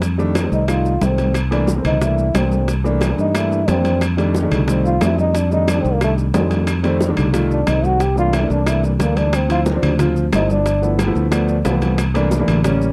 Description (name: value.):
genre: Afro-Cuban jazz.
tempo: 180 BPM.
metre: 4/4.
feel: straight.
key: unclear.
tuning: A4 = 441 Hz.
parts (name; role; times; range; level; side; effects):
trombone with cup mute; melody; 0.0-11.0 s; G3 to G4; -23 LUFS; equal; none.
warm grand piano; accompaniment; 0.0-12.9 s; Eb3 to F5; -23 LUFS; equal; none.
fingered electric bass; bass; 0.0-12.9 s; G1 to G2; -21 LUFS; equal; none.
bongos; percussion; 0.0-12.8 s; none; -27 LUFS; equal; none.
congas; percussion; 0.0-12.9 s; none; -28 LUFS; equal; none.
maracas; percussion; 0.0-12.9 s; none; -41 LUFS; equal; none.
timbales; percussion; 0.0-12.8 s; none; -30 LUFS; equal; none.
claves; percussion; 0.4-12.6 s; none; -36 LUFS; equal; none.
room: little or no reverb.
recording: dry, close 1970s-style studio recording.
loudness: -17 LUFS.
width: mono.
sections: 0.0-12.9 A section.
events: trombone solo 0.0-12.9; grand piano fill 11.3-12.0.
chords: 0.0 F13; 1.4 C13; 4.0 F13; 8.0 C13; 9.3 Dm7; 10.7 G13; 12.0 C13.